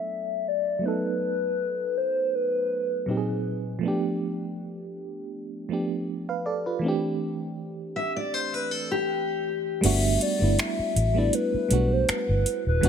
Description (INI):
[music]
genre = contemporary R&B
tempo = 80 BPM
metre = 4/4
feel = swing 54% on 16ths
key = G major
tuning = A4 = 439 Hz
[part]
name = hollow clarinet-like synth lead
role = melody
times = 0.0-3.5, 9.8-12.9 s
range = B4 to E5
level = -26 LUFS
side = left 2 dB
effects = chorus, phaser, low-pass filter, tape echo
[part]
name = FM electric piano with auto-pan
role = accompaniment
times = 0.0-12.9 s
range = Bb2 to F5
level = -28 LUFS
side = right 3 dB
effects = low-pass filter
[part]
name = fingerpicked steel-string acoustic guitar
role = arpeggios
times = 8.0-9.8 s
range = G4 to E5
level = -28 LUFS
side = left 4 dB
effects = low-pass filter, tape echo
[part]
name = vintage muted fingered electric bass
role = bass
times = 9.8-12.9 s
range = Eb1 to B1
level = -24 LUFS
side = equal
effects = none
[part]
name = booming analog drum machine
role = drums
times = 9.8-12.9 s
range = crash cymbal, finger snaps, hi-hat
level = -29 LUFS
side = left 1 dB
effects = none
[sound]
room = light reverb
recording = none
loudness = -24 LUFS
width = side -8 dB against mid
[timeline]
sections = 0.0-9.8 A section; 9.8-12.9 B section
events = filter sweep 0.0-9.8; kick muted 9.8-12.9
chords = 0.0 Bm7; 0.8 B7; 3.1 Ab9; 3.8 G7; 6.8 C69; 9.8 Gmaj9